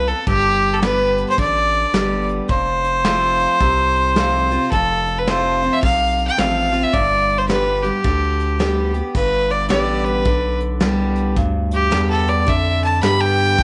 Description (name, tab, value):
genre	honky-tonk and classic country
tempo	108 BPM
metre	4/4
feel	swing 63% on 8ths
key	G mixolydian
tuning	A4 = 440 Hz
part	clear fiddle	melody	0.0-13.6 s	G4 to B5	-20 LUFS	equal	none
part	picked steel-string acoustic guitar	accompaniment	0.0-13.6 s	F2 to G4	-25 LUFS	equal	none
part	round analog bass	bass	0.0-13.6 s	F1 to A2	-25 LUFS	equal	none
part	soft brush drum kit	drums	0.1-13.6 s	crash cymbal, hi-hat, kick drum, snare drum	-25 LUFS	equal	none
room	moderate spring reverb, RT60 2.0 s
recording	nothing above 10.9 kHz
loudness	-18 LUFS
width	mono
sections	0.0-9.1 A section; 9.1-13.6 B section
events	fiddle solo 9.1-13.6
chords	0.3 G; 2.5 F; 6.9 G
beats	| 0.27 0.82 1.38 1.94 | 2.49 3.05 3.60 4.16 | 4.71 5.27 5.82 6.38 | 6.93 7.49 8.04 8.60 | 9.15 9.70 10.26 10.81 | 11.37 11.92 12.47 13.03 | 13.58